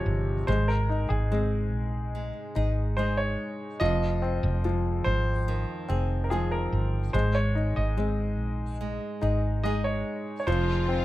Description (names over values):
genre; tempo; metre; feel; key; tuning
pop; 72 BPM; 4/4; straight; unclear; A4 = 440 Hz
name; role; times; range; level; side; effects
clear baby grand piano; melody; 0.0-11.0 s; Ab4 to Eb5; -32 LUFS; right 1 dB; none
clear upright piano; accompaniment; 0.0-11.0 s; C3 to Eb4; -31 LUFS; left 3 dB; none
nylon-string guitar; arpeggios; 0.0-11.0 s; F2 to Ab4; -39 LUFS; right 6 dB; none
woody fretless electric bass; bass; 0.1-11.0 s; F1 to Bb1; -27 LUFS; equal; wide subtle chorus
rich studio string section; sustained chords; 10.5-11.0 s; Eb3 to F4; -34 LUFS; equal; none
room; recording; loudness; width
light reverb; rough home demo mix; -25 LUFS; side -16 dB against mid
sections
0.0-11.0 A section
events
none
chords
0.5 Ab; 3.8 Fm7; 7.1 Ab; 10.5 Fm7